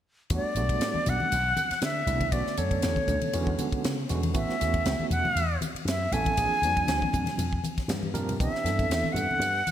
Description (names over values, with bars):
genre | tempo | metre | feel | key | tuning
electric jazz fusion | 118 BPM | 4/4 | swing 54% on 16ths | E minor | A4 = 440 Hz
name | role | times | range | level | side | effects
bright concert flute | melody | 0.3-9.7 s | C#5 to G#5 | -28 LUFS | equal | none
overdriven tine electric piano | accompaniment | 0.3-9.5 s | D3 to A#4 | -33 LUFS | right 4 dB | fast tremolo
slap bass with an envelope filter | bass | 0.3-9.6 s | A1 to D3 | -30 LUFS | equal | none
tight funk drum kit | drums | 0.3-9.7 s | hi-hat, kick drum, ride cymbal, snare drum | -32 LUFS | equal | gated reverb
congas | percussion | 0.9-9.7 s | none | -35 LUFS | left 3 dB | none
room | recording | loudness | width
moderate lush hall reverb, RT60 1.7 s, studio ambience | bright 1980s-style digital production | -24 LUFS | side -10 dB against mid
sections
0.3-9.7 A section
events
drum fill 7.9-8.4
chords
0.3 Em11; 2.3 Bm9; 3.3 E13; 4.3 A69; 6.4 A#9; 8.4 Cmaj7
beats
| 0.30 0.81 1.31 1.82 | 2.33 2.83 3.34 3.84 | 4.35 4.86 5.36 5.87 | 6.38 6.88 7.39 7.90 | 8.40 8.91 9.42